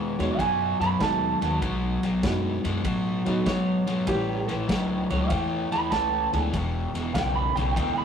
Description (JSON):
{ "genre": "electric blues shuffle", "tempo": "98 BPM", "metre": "4/4", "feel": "swing 68% on 8ths", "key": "unclear", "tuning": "A4 = 440 Hz", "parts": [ { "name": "electric guitar through a small old amp", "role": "second line", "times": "0.0-8.0 s", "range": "G4 to B5", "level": "-27 LUFS", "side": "right 4 dB", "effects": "none" }, { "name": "overdriven semi-hollow guitar", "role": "riff", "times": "0.0-8.0 s", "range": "E2 to G#3", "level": "-27 LUFS", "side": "left 1 dB", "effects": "none" }, { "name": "upright bass", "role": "bass", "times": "0.0-8.0 s", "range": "E1 to A2", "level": "-30 LUFS", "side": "left 1 dB", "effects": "none" }, { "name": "dark baby grand piano", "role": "accompaniment", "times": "0.2-6.5 s", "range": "F#3 to G#4", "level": "-30 LUFS", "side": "right 1 dB", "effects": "none" }, { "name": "vintage drum kit", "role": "drums", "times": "0.2-8.0 s", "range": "kick drum, ride cymbal, snare drum", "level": "-33 LUFS", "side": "equal", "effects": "none" } ], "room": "moderate studio reverb, RT60 0.6 s", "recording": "rough rehearsal-room recording, tube saturation", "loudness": "-23 LUFS", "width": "side -7 dB against mid", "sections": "0.0-8.0 A section", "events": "clean electric guitar solo 0.0-8.0", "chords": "0.0 B7; 4.1 A7; 6.5 E7(no3)" }